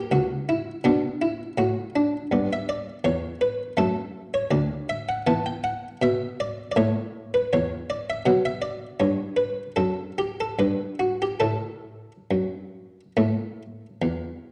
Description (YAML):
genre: classical, baroque-style suite movement for harpsichord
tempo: 69-85 BPM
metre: 4/4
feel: rubato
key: D major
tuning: A4 = 440 Hz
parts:
  - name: buff-stop harpsichord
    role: solo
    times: 0.0-14.5 s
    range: C#2 to A5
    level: -26 LUFS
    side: equal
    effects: none
room: wet recital hall reverb, RT60 1.4 s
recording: worn, warbling old tape, cassette tape, warbly pitch drift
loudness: -25 LUFS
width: mono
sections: 0.0-14.5 A section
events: none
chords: 0.0 F#; 0.9 D69; 2.3 Em/G; 3.8 D/F#; 5.3 E5; 6.8 A5; 8.3 B5; 11.4 F#m; 13.2 A5